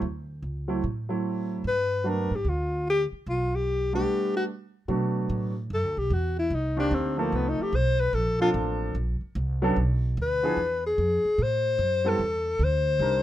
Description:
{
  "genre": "jazz, small-group swing and bop",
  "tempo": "148 BPM",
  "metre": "4/4",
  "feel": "swing 65% on 8ths",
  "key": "G major",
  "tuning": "A4 = 445 Hz",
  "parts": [
    { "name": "upright bass", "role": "bass", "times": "0.0-13.2 s", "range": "A1 to B2", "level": "-28 LUFS", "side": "right 1 dB", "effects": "none" },
    { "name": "warm grand piano", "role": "accompaniment", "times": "0.7-13.2 s", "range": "Eb3 to Bb4", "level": "-28 LUFS", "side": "right 2 dB", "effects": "none" },
    { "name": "warm alto saxophone", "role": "melody", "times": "1.7-13.2 s", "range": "Bb3 to C5", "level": "-26 LUFS", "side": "left 2 dB", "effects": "none" }
  ],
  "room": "little or no reverb",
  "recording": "minimal, uncompressed stereo recording",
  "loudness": "-24 LUFS",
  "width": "side -13 dB against mid",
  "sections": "0.0-4.9 A section; 4.9-13.2 B section",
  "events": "none",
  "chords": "0.0 D7; 1.6 G; 4.9 Bm7; 6.5 Cm9; 7.3 F7; 8.1 Bbmaj7; 9.8 Bm; 10.6 E; 11.4 Am",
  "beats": "| 0.01 0.42 0.83 1.23 | 1.64 2.04 2.45 2.85 | 3.26 3.67 4.07 4.48 | 4.88 5.29 5.70 6.10 | 6.51 6.92 7.32 7.73 | 8.14 8.54 8.95 9.36 | 9.76 10.17 10.57 10.98 | 11.39 11.79 12.20 12.60 | 13.01"
}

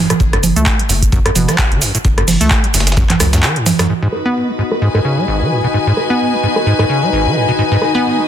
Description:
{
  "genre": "acid house",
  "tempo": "130 BPM",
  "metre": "4/4",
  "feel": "swing 56% on 16ths",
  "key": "G# phrygian",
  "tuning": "A4 = 440 Hz",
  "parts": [
    { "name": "acid bass, square", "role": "riff", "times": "0.0-8.2 s", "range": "F#1 to B3", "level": "-17 LUFS", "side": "equal", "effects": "tube saturation, sidechain pumping, ping-pong delay" },
    { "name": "booming analog drum machine", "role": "drums", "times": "0.1-8.2 s", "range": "congas, handclaps, hi-hat, rim click, shaker", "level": "-16 LUFS", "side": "right 3 dB", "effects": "overdrive, low-pass filter on snare, low-pass filter on hats, low-pass filter on perc, low-pass filter on room" },
    { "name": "saturated sub bass", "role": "bass", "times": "0.2-3.4 s", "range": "F#1 to C#2", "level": "-17 LUFS", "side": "equal", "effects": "sidechain pumping" },
    { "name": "dusty soul sampler-style drum kit", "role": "drums", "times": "0.2-3.9 s", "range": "hi-hat, snare drum", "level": "-24 LUFS", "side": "equal", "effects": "high-pass filter on snare, sidechain pumping on hats, high-pass filter on hats, high-pass filter on room" },
    { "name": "electronic kick drum", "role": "drums", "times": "0.2-3.1 s", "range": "none", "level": "-15 LUFS", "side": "equal", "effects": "overdrive" },
    { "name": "string machine, full ensemble", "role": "sustained chords", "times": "3.9-8.3 s", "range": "D#4 to D#5", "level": "-20 LUFS", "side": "equal", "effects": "ensemble chorus, sidechain pumping" },
    { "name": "rich chamber string section", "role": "texture", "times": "3.9-8.3 s", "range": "F#4 to G#5", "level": "-18 LUFS", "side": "left 3 dB", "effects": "sidechain pumping" }
  ],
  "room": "light reverb, digital ambience",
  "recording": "dense, heavily limited modern master",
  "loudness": "-11 LUFS",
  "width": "side -10 dB against mid",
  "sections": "0.0-3.9 A section; 3.9-8.3 B section",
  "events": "filter sweep on acid bass 0.0-3.9",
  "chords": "0.0 F#m; 3.9 G#m7",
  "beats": "| 0.20 0.66 1.12 1.59 | 2.05 2.51 2.97 3.43 | 3.89 4.36 4.82 5.28 | 5.74 6.20 6.66 7.12 | 7.59 8.05"
}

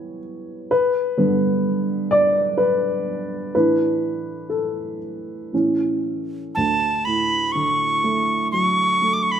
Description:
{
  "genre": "celtic folk, Celtic slow air",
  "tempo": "57-66 BPM",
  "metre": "3/4",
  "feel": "rubato",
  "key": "D major",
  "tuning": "A4 = 440 Hz",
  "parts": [
    { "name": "dark upright piano", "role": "accompaniment", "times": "0.0-9.4 s", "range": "D2 to D5", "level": "-20 LUFS", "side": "equal", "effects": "none" },
    { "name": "bright mid whistle", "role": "melody", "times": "6.5-9.4 s", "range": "A5 to D6", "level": "-19 LUFS", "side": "right 1 dB", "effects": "none" }
  ],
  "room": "moderate recital hall reverb, RT60 1.6 s",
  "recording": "none",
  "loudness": "-18 LUFS",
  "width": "side -9 dB against mid",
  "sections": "0.0-6.6 A section; 6.6-9.4 B section",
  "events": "upright piano solo 0.0-6.6",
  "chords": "0.0 Em; 0.7 G; 3.5 Asus4; 5.5 A; 6.6 Dmaj7",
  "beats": "| 0.69 1.63 2.59 | 3.54 4.51 5.52 | 6.55 7.54 8.52"
}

